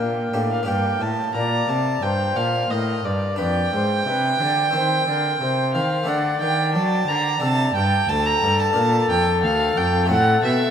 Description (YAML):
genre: classical, baroque-style sonata movement with continuo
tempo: 89 BPM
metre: 4/4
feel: straight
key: G minor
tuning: A4 = 442 Hz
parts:
  - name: bright baroque flute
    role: melody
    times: 0.0-10.7 s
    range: A4 to D5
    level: -25 LUFS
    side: left 5 dB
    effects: none
  - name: warm violin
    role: second line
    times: 0.0-10.7 s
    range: D5 to Bb5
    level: -21 LUFS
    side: right 3 dB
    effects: none
  - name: harpsichord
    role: accompaniment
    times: 0.0-10.7 s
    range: D2 to C5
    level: -27 LUFS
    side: left 1 dB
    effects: none
  - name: rich cello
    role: bass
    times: 0.0-10.7 s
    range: D2 to F#3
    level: -24 LUFS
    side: equal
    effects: none
room: wet cathedral reverb, RT60 5.1 s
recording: in a vast, echoing space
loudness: -18 LUFS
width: side -8 dB against mid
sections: 0.7-10.7 A section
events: none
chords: 0.0 Gm; 3.4 G7/F; 4.7 Cm; 6.1 D; 7.4 D5; 8.8 Gm9; 10.1 Am69